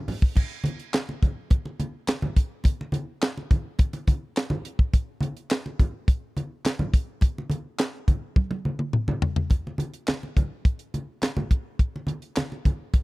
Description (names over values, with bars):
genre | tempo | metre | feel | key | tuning
funk | 105 BPM | 4/4 | straight | none | none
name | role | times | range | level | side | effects
tight funk drum kit | drums | 0.1-13.0 s | crash cymbal, handclaps, hi-hat, kick drum, snare drum, toms | -21 LUFS | equal | none
congas | percussion | 0.1-13.0 s | none | -30 LUFS | equal | none
room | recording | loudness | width
small room ambience | dry, close 1970s-style studio recording | -24 LUFS | side -22 dB against mid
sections
0.4-9.5 A section; 9.5-13.0 B section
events
drum fill 8.4-9.5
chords
none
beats
| 0.36 0.94 1.51 2.08 | 2.65 3.22 3.79 4.36 | 4.94 5.51 6.08 6.65 | 7.22 7.79 8.36 8.94 | 9.51 10.08 10.65 11.22 | 11.79 12.36 12.94